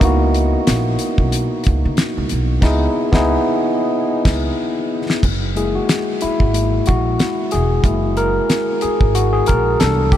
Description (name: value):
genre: R&B, neo-soul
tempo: 92 BPM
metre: 4/4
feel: swing 55% on 16ths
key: unclear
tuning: A4 = 440 Hz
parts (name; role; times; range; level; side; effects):
- barky tine electric piano; accompaniment; 0.0-10.2 s; E3 to A#4; -18 LUFS; left 1 dB; overdrive
- upright bass; bass; 0.0-10.2 s; E1 to C#3; -19 LUFS; equal; none
- damped 70s drum kit; drums; 0.0-10.2 s; crash cymbal, hi-hat, kick drum, snare drum; -20 LUFS; equal; none
room: moderate huge ambient reverb, RT60 7.8 s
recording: dreamy mix soaked in reverb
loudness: -15 LUFS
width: side -11 dB against mid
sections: 0.0-5.2 A section; 5.2-10.2 B section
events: band accent 2.6-5.2; tine electric piano fill 3.9-5.2; drum fill 4.6-5.2; tine electric piano solo 5.2-10.2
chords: 0.0 C#m11; 5.2 F#9